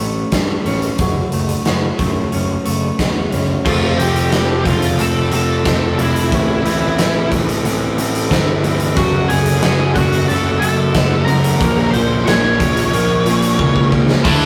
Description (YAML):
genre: quiet-loud alternative rock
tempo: 91 BPM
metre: 4/4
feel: straight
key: unclear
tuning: A4 = 440 Hz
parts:
  - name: electric guitar through a small old amp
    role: arpeggios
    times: 0.0-14.2 s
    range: F#2 to C#4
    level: -26 LUFS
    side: equal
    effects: none
  - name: fuzz picked electric bass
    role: bass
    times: 0.0-14.5 s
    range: F1 to G2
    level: -21 LUFS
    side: equal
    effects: overdrive
  - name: big rock drum kit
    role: drums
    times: 0.3-14.4 s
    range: crash cymbal, hi-hat, kick drum, snare drum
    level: -21 LUFS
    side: equal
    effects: none
  - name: octave-fuzz lead guitar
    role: melody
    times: 3.7-14.5 s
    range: E4 to Db6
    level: -23 LUFS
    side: equal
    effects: distortion
  - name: fuzz guitar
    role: riff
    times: 3.7-14.5 s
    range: F#2 to F4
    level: -21 LUFS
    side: equal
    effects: distortion
  - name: tight distorted guitar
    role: riff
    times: 14.2-14.5 s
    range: D3 to D4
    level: -18 LUFS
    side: equal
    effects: distortion
room: moderate stone room reverb, RT60 1.0 s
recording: rough rehearsal-room recording, tube saturation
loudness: -16 LUFS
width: mono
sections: 0.0-3.7 A section; 3.7-14.2 B section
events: drum fill 13.6-14.2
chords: 0.0 A; 1.0 F#m; 3.7 F; 6.3 Am; 9.0 F#m; 11.6 Bbm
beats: 0.33 | 1.00 1.67 2.33 3.00 | 3.67 4.33 5.00 5.66 | 6.32 6.99 7.65 8.31 | 8.97 9.63 10.29 10.96 | 11.62 12.27 12.93 13.59 | 14.25